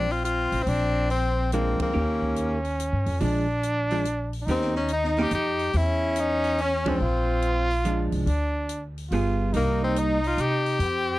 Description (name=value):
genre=jazz, small-group swing and bop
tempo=142 BPM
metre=3/4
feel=swing 66% on 8ths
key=Bb mixolydian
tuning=A4 = 438 Hz
part: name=bright tenor saxophone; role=melody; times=0.0-11.2 s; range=Bb3 to G4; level=-26 LUFS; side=left 3 dB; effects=none
part: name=warm trumpet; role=second line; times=0.0-11.2 s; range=C4 to F4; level=-29 LUFS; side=right 2 dB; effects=none
part: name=vintage hollow-body jazz guitar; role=accompaniment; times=0.0-10.2 s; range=Eb3 to Ab4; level=-27 LUFS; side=right 2 dB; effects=none
part: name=upright bass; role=bass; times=0.0-11.2 s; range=G1 to C3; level=-27 LUFS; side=equal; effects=none
part: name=open jazz drum kit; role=drums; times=0.1-10.9 s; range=hi-hat, kick drum, ride cymbal, snare drum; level=-39 LUFS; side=equal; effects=none
room=little or no reverb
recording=dry, close 1970s-style studio recording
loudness=-22 LUFS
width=side -17 dB against mid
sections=0.0-11.2 A section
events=band accent 1.7, 6.8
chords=0.0 Bb7; 1.9 Eb7; 3.2 Bb7; 4.5 Eb7; 5.7 E5; 7.0 Bb7; 8.3 N.C.; 9.1 G7b9; 9.5 Cm7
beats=0.25 | 0.68 1.10 1.52 | 1.94 2.37 2.79 | 3.21 3.63 4.05 | 4.48 4.90 5.32 | 5.74 6.16 6.58 | 7.01 7.43 7.85 | 8.27 8.69 9.11 | 9.54 9.96 10.38 | 10.80